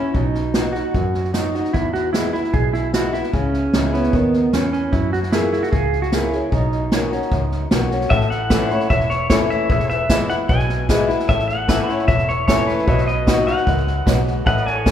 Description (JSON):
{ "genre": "honky-tonk and classic country", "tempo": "151 BPM", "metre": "4/4", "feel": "straight", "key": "unclear", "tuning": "A4 = 440 Hz", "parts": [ { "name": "pedal steel guitar", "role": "second line", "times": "0.0-7.7 s", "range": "B3 to G#4", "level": "-22 LUFS", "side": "right 3 dB", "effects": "none" }, { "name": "picked old ladder-braced acoustic guitar", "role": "accompaniment", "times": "0.0-14.9 s", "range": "E2 to G#4", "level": "-23 LUFS", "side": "left 3 dB", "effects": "none" }, { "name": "vintage muted fingered electric bass", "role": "bass", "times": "0.0-14.9 s", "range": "E1 to F#2", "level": "-24 LUFS", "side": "equal", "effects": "none" }, { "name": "unplugged drum kit", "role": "drums", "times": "0.1-14.9 s", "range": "hi-hat, kick drum, snare drum", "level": "-21 LUFS", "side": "equal", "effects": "none" }, { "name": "pedal steel guitar", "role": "melody", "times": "8.1-14.9 s", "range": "B4 to G#5", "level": "-22 LUFS", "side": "left 1 dB", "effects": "none" }, { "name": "clear upright piano", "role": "accompaniment", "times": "8.1-14.9 s", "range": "F#4 to E5", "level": "-29 LUFS", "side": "right 1 dB", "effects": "none" }, { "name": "pedal steel guitar", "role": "sustained chords", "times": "8.5-14.9 s", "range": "A4 to E5", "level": "-30 LUFS", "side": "equal", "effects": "none" } ], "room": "wet recital hall reverb, RT60 1.5 s", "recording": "recorded in a church or concert hall", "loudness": "-16 LUFS", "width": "side -10 dB against mid", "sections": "0.0-8.1 A section; 8.1-14.9 B section", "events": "pedal steel guitar solo 0.0-8.1", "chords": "0.1 B; 1.7 E; 3.3 C#m; 4.9 F#add9; 6.5 Badd9; 8.1 A; 9.7 E; 11.3 A; 12.9 B" }